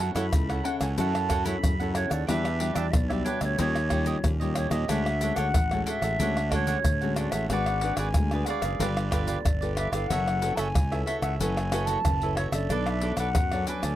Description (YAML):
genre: samba and choro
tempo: 92 BPM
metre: 4/4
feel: straight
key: unclear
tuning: A4 = 438 Hz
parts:
  - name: wooden flute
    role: melody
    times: 0.0-14.0 s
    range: C5 to B5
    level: -31 LUFS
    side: equal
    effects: none
  - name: cavaquinho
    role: accompaniment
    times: 0.0-14.0 s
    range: D4 to F#5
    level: -33 LUFS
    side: right 6 dB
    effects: none
  - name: nylon-string guitar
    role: accompaniment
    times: 0.0-14.0 s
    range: A2 to C#5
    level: -33 LUFS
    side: left 4 dB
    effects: none
  - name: fuzz fingered electric bass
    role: bass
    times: 0.0-14.0 s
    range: F#1 to F#2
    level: -29 LUFS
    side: equal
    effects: overdrive
  - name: pandeiro, egg shaker, tamborim and surdo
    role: percussion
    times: 0.0-14.0 s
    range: none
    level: -28 LUFS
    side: left 1 dB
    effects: none
room: little or no reverb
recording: dry, close 1970s-style studio recording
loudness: -24 LUFS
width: side -13 dB against mid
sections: 0.0-14.0 A section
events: none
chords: 0.0 F#m7; 2.3 Em9; 3.6 D#9; 4.9 Dmaj9#11; 7.5 G#m7b5; 8.8 G9; 10.1 F#m7; 12.7 Bm9